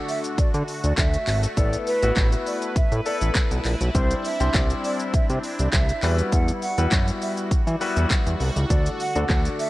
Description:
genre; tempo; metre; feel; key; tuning
dance-pop; 101 BPM; 4/4; straight; E minor; A4 = 439 Hz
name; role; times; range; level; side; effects
clear concert grand piano; accompaniment; 0.0-9.7 s; G3 to C5; -29 LUFS; left 3 dB; sidechain pumping
sweeping resonant pad; sustained chords; 0.0-9.7 s; D3 to B4; -32 LUFS; equal; chorus, sidechain pumping
mellow hollow silver concert flute; melody; 0.1-9.7 s; B4 to F#5; -29 LUFS; right 2 dB; sidechain pumping, ping-pong delay
pop drum kit; drums; 0.1-9.7 s; handclaps, hi-hat, kick drum, shaker, snare drum; -23 LUFS; equal; none
fat analog bass; bass; 0.4-9.5 s; G#1 to E3; -23 LUFS; equal; sidechain pumping
room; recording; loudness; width
light reverb; worn, warbling old tape, cassette tape, warbly pitch drift; -20 LUFS; side -17 dB against mid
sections
0.0-9.7 A section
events
none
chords
0.0 D; 1.6 Asus2; 3.9 Cadd9; 6.0 Emadd9; 8.7 D

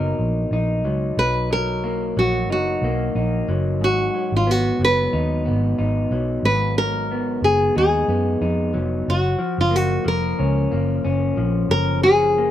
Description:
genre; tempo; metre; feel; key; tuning
indie pop, bedroom pop; 91 BPM; 4/4; swing 55% on 16ths; B lydian; A4 = 439 Hz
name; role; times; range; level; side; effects
nylon-string guitar; melody; 0.0-12.5 s; E#4 to B4; -20 LUFS; equal; slapback echo
electric guitar through a small old amp; accompaniment; 0.0-12.5 s; G#2 to D#4; -24 LUFS; left 2 dB; warbly pitch drift
vintage muted fingered electric bass; bass; 0.0-12.5 s; E#1 to F#2; -22 LUFS; right 1 dB; none
room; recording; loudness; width
little or no reverb; recorded outdoors, with no room sound; -18 LUFS; side -11 dB against mid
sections
0.0-12.5 A section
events
none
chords
0.0 Bmaj7; 3.8 G#m7; 9.1 F#maj7

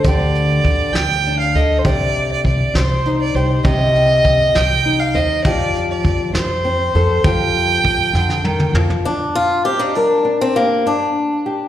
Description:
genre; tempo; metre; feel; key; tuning
acoustic folk duo or small band; 67 BPM (dotted quarters); 6/8; straight; G minor; A4 = 440 Hz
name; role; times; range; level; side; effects
dark fiddle; second line; 0.0-8.8 s; C5 to G5; -17 LUFS; right 2 dB; plate reverb, slapback echo
nylon-string guitar; accompaniment; 0.0-11.7 s; G2 to C5; -21 LUFS; left 2 dB; plate reverb, slapback echo
upright bass; bass; 0.0-9.0 s; C2 to F2; -19 LUFS; equal; none
soft brush drum kit; drums; 0.0-9.0 s; hi-hat, kick drum, snare drum, toms; -20 LUFS; equal; none
picked swing-style acoustic guitar; melody; 9.1-11.7 s; Bb3 to G4; -16 LUFS; left 2 dB; plate reverb, slapback echo
room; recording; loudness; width
moderate club reverb, RT60 0.8 s; live gig heard through the venue's PA, recital hall reverb; -14 LUFS; side -11 dB against mid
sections
0.0-9.1 A section; 9.1-11.7 B section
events
fiddle solo 0.0-9.1; drum fill 8.2-9.1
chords
0.0 Dsus4; 1.9 Cm; 5.5 Fadd9; 9.1 Gm

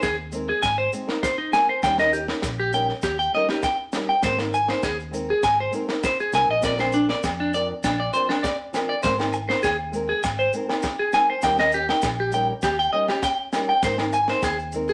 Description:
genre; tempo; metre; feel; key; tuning
highlife guitar band; 100 BPM; 4/4; straight; unclear; A4 = 441 Hz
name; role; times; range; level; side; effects
fingerpicked old ladder-braced acoustic guitar; accompaniment; 0.0-14.9 s; F3 to Bb4; -32 LUFS; equal; none
electric guitar at the edge of break-up; arpeggios; 0.0-14.9 s; D4 to Ab5; -24 LUFS; equal; phaser
fingered electric bass; bass; 0.0-14.9 s; Ab1 to F2; -36 LUFS; equal; none
tight funk drum kit; drums; 0.0-14.6 s; kick drum, snare drum; -32 LUFS; equal; none
maracas; percussion; 0.0-14.9 s; none; -44 LUFS; equal; none
agogo bells; percussion; 6.8-14.6 s; none; -33 LUFS; equal; none
room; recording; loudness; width
wet studio reverb, RT60 0.7 s; none; -23 LUFS; mono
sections
0.0-14.9 A section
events
none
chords
0.0 Abadd9; 1.8 Eb7; 4.2 Abadd9; 6.6 Bbadd9; 9.0 Abadd9; 11.4 Eb7; 13.8 Abadd9

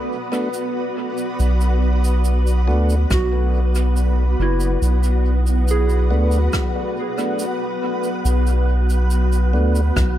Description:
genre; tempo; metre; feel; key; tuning
ambient dub; 70 BPM; 4/4; straight; B dorian; A4 = 440 Hz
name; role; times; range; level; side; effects
granular cloud pad; sustained chords; 0.0-10.2 s; B3 to D5; -24 LUFS; left 1 dB; built-in reverb
mellow tonewheel organ; stabs; 0.3-9.8 s; A3 to F#4; -28 LUFS; equal; slow rotary speaker, dub echo
shaker and rim click; drums; 0.3-10.1 s; none; -31 LUFS; right 1 dB; dub echo
soft dub sub bass; bass; 1.4-10.2 s; F#1 to D2; -16 LUFS; equal; none
wind-like tuned noise texture; texture; 3.0-10.2 s; F#3 to F#4; -31 LUFS; right 1 dB; built-in reverb
soft synth bell; arpeggios; 3.1-10.2 s; E4 to G#4; -28 LUFS; right 4 dB; chorus, tape echo
electronic kick drum; drums; 3.1-10.1 s; none; -24 LUFS; equal; none
room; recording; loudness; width
small room ambience; echo-heavy mix; -16 LUFS; side -12 dB against mid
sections
0.0-10.2 A section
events
none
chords
0.0 Bm7

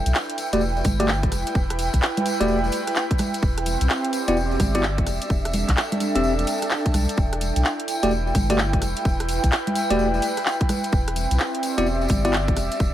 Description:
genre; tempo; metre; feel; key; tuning
UK garage, two-step garage; 128 BPM; 4/4; swing 64% on 16ths; E minor; A4 = 444 Hz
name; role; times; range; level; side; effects
airy breathy pad; texture; 0.0-12.9 s; C4 to G5; -26 LUFS; right 1 dB; chorus, sidechain pumping
saturated sub bass; bass; 0.1-12.9 s; E1 to B1; -24 LUFS; equal; sidechain pumping
garage drum kit; drums; 0.1-12.8 s; congas, handclaps, hi-hat, rim click; -26 LUFS; right 1 dB; analog delay
tambourine; percussion; 0.1-12.9 s; none; -36 LUFS; left 3 dB; analog delay
bell-like tine electric piano; stabs; 0.5-12.3 s; A3 to E5; -24 LUFS; left 1 dB; low-pass filter, tape echo
electronic kick drum; drums; 0.8-12.9 s; none; -22 LUFS; equal; none
room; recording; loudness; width
moderate spring reverb, RT60 1.9 s; echo-heavy mix, vinyl crackle; -20 LUFS; side -12 dB against mid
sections
0.0-12.9 A section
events
filter sweep on tine electric piano 0.0-12.9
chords
0.0 Em11; 3.4 Cmaj9/E; 5.1 D9sus4/E; 7.2 Em11; 10.9 Cmaj9/E

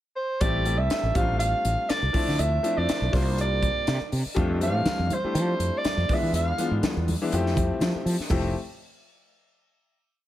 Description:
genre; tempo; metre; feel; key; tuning
electric jazz fusion; 122 BPM; 4/4; swing 54% on 16ths; F major; A4 = 442 Hz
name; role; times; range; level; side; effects
warm soprano saxophone; melody; 0.2-6.8 s; C5 to F5; -28 LUFS; right 2 dB; none
clear grand piano; accompaniment; 0.4-8.5 s; E3 to G4; -29 LUFS; left 3 dB; plate reverb
fretless electric bass; bass; 0.4-8.5 s; F1 to F3; -26 LUFS; equal; none
crisp fusion drum kit; drums; 0.4-8.4 s; crash cymbal, hi-hat, kick drum, snare drum; -29 LUFS; equal; none
congas; percussion; 4.4-8.5 s; none; -33 LUFS; right 1 dB; none
room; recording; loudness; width
light reverb; none; -22 LUFS; side -13 dB against mid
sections
0.0-0.4 pickup bar; 0.4-8.3 A section; 8.3-10.3 final chord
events
none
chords
0.4 Am7; 1.2 F6/A; 2.1 Dm7; 3.1 C9sus4; 4.4 F6; 6.1 E7b9; 7.3 Fmaj9

